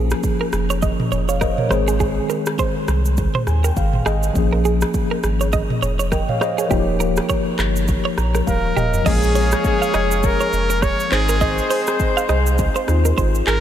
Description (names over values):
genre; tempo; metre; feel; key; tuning
afrobeats; 102 BPM; 4/4; swing 58% on 16ths; Bb dorian; A4 = 440 Hz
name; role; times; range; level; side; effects
tine electric piano; accompaniment; 0.0-13.6 s; Eb3 to Bb5; -23 LUFS; left 2 dB; medium stereo tremolo
clean electric guitar; riff; 0.0-13.6 s; G4 to F5; -25 LUFS; right 6 dB; harmonic tremolo, analog delay
saturated sub bass; bass; 0.0-13.6 s; Eb1 to Eb2; -20 LUFS; equal; none
afro-pop drum kit; drums; 0.1-13.6 s; crash cymbal, handclaps, hi-hat, kick drum, rim click, shaker, toms; -23 LUFS; equal; none
bright trumpet; melody; 8.5-13.6 s; Ab4 to Db5; -23 LUFS; equal; analog delay
warm horn section; second line; 9.1-13.4 s; Ab3 to Db5; -24 LUFS; left 4 dB; analog delay
room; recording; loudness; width
moderate huge ambient reverb, RT60 4.0 s; dreamy mix soaked in reverb; -16 LUFS; side -10 dB against mid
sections
0.0-9.1 A section; 9.1-13.6 B section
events
tine electric piano fill 3.2-4.4, 7.9-9.1; drum fill 8.5-9.1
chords
0.0 Bbm7; 1.7 Ab; 4.4 Bbm7; 6.7 Ebadd9; 9.1 Bbm7; 11.1 Ab